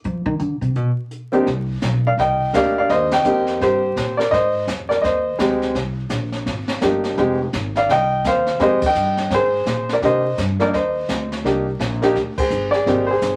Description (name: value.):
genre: jazz piano trio.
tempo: 168 BPM.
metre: 4/4.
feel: swing 62% on 8ths.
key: C minor.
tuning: A4 = 435 Hz.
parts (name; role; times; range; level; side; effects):
jazz brush drum kit; drums; 0.0-13.4 s; brushed snare drum, hi-hat, kick drum, ride cymbal, snare drum; -30 LUFS; equal; none.
upright bass; bass; 0.1-13.4 s; F1 to F3; -27 LUFS; equal; none.
clear baby grand piano; melody; 1.3-13.4 s; Ab3 to G5; -20 LUFS; equal; none.
room: wet small room reverb, RT60 0.5 s.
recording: vinyl crackle.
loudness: -19 LUFS.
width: mono.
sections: 0.0-1.5 A section; 1.5-13.4 B section.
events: upright bass solo 0.0-1.5; band accent 3.1, 8.8, 12.3.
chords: 0.1 Cm9; 4.3 Fm9; 5.8 Cm9; 7.2 Fm9; 10.0 Cm9.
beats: | 0.05 0.41 0.76 1.12 | 1.47 1.83 2.19 2.54 | 2.90 3.25 3.61 3.97 | 4.33 4.68 5.04 5.39 | 5.75 6.11 6.46 6.82 | 7.18 7.53 7.89 8.25 | 8.60 8.96 9.31 9.67 | 10.03 10.38 10.74 11.10 | 11.45 11.81 12.16 12.52 | 12.87 13.23.